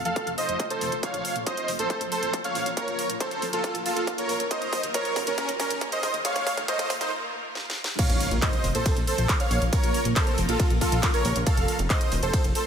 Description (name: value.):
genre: uplifting trance.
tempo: 138 BPM.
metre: 4/4.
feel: straight.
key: Bb harmonic minor.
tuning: A4 = 443 Hz.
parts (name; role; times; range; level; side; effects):
shimmering ambient pad; sustained chords; 0.0-12.7 s; C3 to Bb4; -34 LUFS; equal; chorus, built-in reverb, phaser, sidechain pumping.
plucky analog bass; bass; 0.0-12.5 s; Eb1 to Eb2; -30 LUFS; equal; sidechain pumping.
dense compressed supersaw; melody; 0.1-12.7 s; Db4 to F5; -27 LUFS; right 1 dB; sidechain pumping, low-pass filter, ping-pong delay.
techno drum kit; drums; 0.1-12.6 s; crash cymbal, handclaps, hi-hat, ride cymbal, snare drum; -31 LUFS; right 1 dB; overdrive, studio reverb.
electronic kick drum; drums; 0.2-12.4 s; none; -27 LUFS; equal; distortion, overdrive, high-pass filter on kick, studio reverb.
riser and impact; sound effects; 3.3-9.7 s; none; -38 LUFS; equal; none.
room: moderate lush hall reverb, RT60 2.1 s.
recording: high-pass filter.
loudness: -23 LUFS.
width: side -8 dB against mid.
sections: 0.0-8.0 A section; 8.0-12.7 B section.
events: build-up 0.0-8.0; drum fill 1.0-7.1, 7.6-8.0; riser 3.3-7.1; break 7.1-8.0; drop 8.0-12.7; impact 8.0-9.7.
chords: 0.0 F; 1.0 Bbm; 4.5 Ebsus2; 8.0 Bbm; 11.5 F.